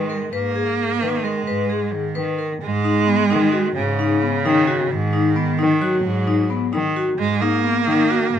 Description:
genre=contemporary instrumental, chamber music in an uneven meter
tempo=263 BPM (eighths)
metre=5/8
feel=straight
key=G# minor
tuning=A4 = 440 Hz
part: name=warm cello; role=second line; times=0.0-8.4 s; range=C#3 to A#3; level=-21 LUFS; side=right 5 dB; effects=none
part: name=vibraphone with medium hard mallets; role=arpeggios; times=0.0-8.3 s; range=B3 to B4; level=-21 LUFS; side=left 5 dB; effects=none
part: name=rich cello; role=bass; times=0.0-8.4 s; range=G#2 to D#3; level=-24 LUFS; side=equal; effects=none
room=light reverb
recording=close, detailed microphones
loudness=-17 LUFS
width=side -9 dB against mid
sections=0.0-2.6 A section; 2.6-8.4 B section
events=none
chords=0.0 G#madd9; 2.6 G#m7

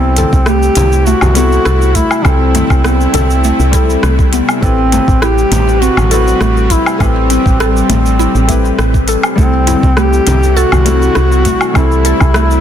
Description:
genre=organic downtempo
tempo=101 BPM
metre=4/4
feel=straight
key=unclear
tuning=A4 = 440 Hz
part: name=mellow duduk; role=melody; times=0.0-12.6 s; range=C4 to G4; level=-15 LUFS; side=equal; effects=tape echo
part: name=felt-muted upright piano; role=accompaniment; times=0.0-12.6 s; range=G3 to B4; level=-20 LUFS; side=left 4 dB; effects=sidechain pumping, ping-pong delay
part: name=bowed-like drone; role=sustained chords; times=0.0-12.6 s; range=C3 to B4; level=-20 LUFS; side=left 1 dB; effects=built-in reverb, vintage 12-bit sampler grit, sidechain pumping
part: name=mallet-like synth pluck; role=arpeggios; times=0.0-12.6 s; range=A3 to A4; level=-18 LUFS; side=equal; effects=chorus, phaser, ping-pong delay
part: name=woody FM bass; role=bass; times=0.0-12.6 s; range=A1 to C2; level=-12 LUFS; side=equal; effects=none
part: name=organic electronic drum kit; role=drums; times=0.2-12.6 s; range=cabasa, hi-hat, rim click, woodblock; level=-18 LUFS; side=left 1 dB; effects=none
part: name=frame drum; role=percussion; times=0.2-10.8 s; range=none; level=-22 LUFS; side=left 4 dB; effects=none
part: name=electronic kick drum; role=drums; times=0.3-12.3 s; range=none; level=-13 LUFS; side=equal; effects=none
room=light reverb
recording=dense, heavily limited modern master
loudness=-8 LUFS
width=side -9 dB against mid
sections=0.0-12.6 A section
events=none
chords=0.0 C6; 4.6 Am9; 9.4 C6

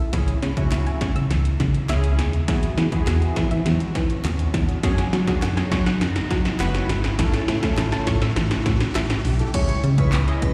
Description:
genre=dance-pop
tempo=102 BPM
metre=4/4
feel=straight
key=C# minor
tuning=A4 = 440 Hz
part: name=chorused polysynth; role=accompaniment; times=0.0-10.5 s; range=C#4 to D#5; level=-33 LUFS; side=equal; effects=sidechain pumping, slapback echo
part: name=chorused pulse-width pad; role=sustained chords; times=0.0-10.5 s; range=C#3 to F#4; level=-34 LUFS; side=equal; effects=sidechain pumping
part: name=plucky analog bass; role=bass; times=0.0-10.5 s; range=F#1 to F#3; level=-24 LUFS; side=equal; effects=sidechain pumping
part: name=riser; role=sound effects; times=0.1-9.5 s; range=none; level=-38 LUFS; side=equal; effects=none
part: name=soft round pluck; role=arpeggios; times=0.1-9.0 s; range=E3 to F#6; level=-35 LUFS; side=equal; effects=chorus, sidechain pumping, slapback echo, delay
part: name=punchy analog drum machine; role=drums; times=0.1-10.5 s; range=crash cymbal, handclaps, hi-hat, kick drum, snare drum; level=-26 LUFS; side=equal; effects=none
part: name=group handclap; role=percussion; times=0.7-10.3 s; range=none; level=-43 LUFS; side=equal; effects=none
part: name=airy dreamy lead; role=melody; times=9.5-10.5 s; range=B4 to C#5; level=-33 LUFS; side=equal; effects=chorus, phaser, sidechain pumping, slapback echo, delay
room=light reverb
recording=live gig heard through the venue's PA, recital hall reverb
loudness=-21 LUFS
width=mono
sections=0.0-9.5 A section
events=build-up 0.0-9.5; drum fill 0.0-9.5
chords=0.1 C#m; 2.5 Eadd9; 4.8 F#sus2; 7.2 A; 9.5 C#m

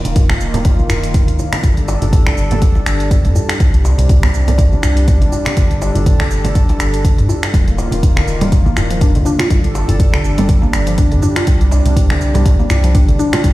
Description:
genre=afro house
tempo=122 BPM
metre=4/4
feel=swing 56% on 16ths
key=G minor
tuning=A4 = 440 Hz
part: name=warm analog pad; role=sustained chords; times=0.0-13.5 s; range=C3 to A4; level=-21 LUFS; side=equal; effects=chorus, tremolo, sidechain pumping
part: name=congas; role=percussion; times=0.0-13.4 s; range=none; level=-22 LUFS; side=right 2 dB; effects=none
part: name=warm sub bass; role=bass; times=0.1-13.5 s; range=Eb1 to G2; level=-16 LUFS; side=equal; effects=sidechain pumping
part: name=deep house drum kit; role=drums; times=0.1-13.5 s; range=finger snaps, hi-hat, shaker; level=-23 LUFS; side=equal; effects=none
part: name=electronic kick drum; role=drums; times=0.2-13.5 s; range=none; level=-13 LUFS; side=equal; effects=none
part: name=djembe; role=percussion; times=0.2-13.5 s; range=none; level=-22 LUFS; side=left 1 dB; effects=none
part: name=mallet-like synth pluck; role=arpeggios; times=7.5-13.5 s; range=D3 to F4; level=-20 LUFS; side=left 1 dB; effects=chorus, sidechain pumping, dub echo
room=digital ambience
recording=played on a big sound system in a bare room, stone room reverb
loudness=-11 LUFS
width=side -17 dB against mid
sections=0.0-13.5 A section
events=none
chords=0.0 Eb5; 1.6 Gsus2; 3.6 Csus2; 5.6 Gsus2; 7.5 Eb5; 9.5 Gsus2; 11.5 Csus2

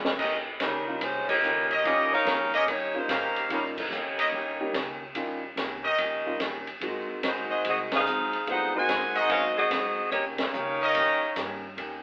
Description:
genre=jazz, big band swing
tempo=145 BPM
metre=4/4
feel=swing 65% on 8ths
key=Eb mixolydian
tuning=A4 = 440 Hz
part: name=vintage hollow-body jazz guitar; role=accompaniment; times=0.0-12.0 s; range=Ab2 to G4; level=-41 LUFS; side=equal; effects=none
part: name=upright bass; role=bass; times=0.0-12.0 s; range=G1 to Bb2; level=-51 LUFS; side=equal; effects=none
part: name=open jazz drum kit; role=drums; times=0.0-11.9 s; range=crash cymbal, hi-hat, kick drum, ride cymbal, snare drum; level=-35 LUFS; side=equal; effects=none
part: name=bright trumpet section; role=stabs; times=0.2-11.3 s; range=Db4 to F5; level=-29 LUFS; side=equal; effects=none
part: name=warm saxophone section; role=melody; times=0.6-11.6 s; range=G3 to Ab5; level=-29 LUFS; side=equal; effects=none
part: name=warm concert grand piano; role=accompaniment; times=0.9-9.6 s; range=G3 to G4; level=-38 LUFS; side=equal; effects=none
room=moderate large studio reverb, RT60 0.9 s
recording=band playing live in one room, telephone sound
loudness=-27 LUFS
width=mono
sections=0.2-12.0 A section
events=drum fill 0.0; band accent 1.2, 3.7, 7.8, 10.3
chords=0.2 Eb7; 6.8 Ab7; 10.1 Eb7

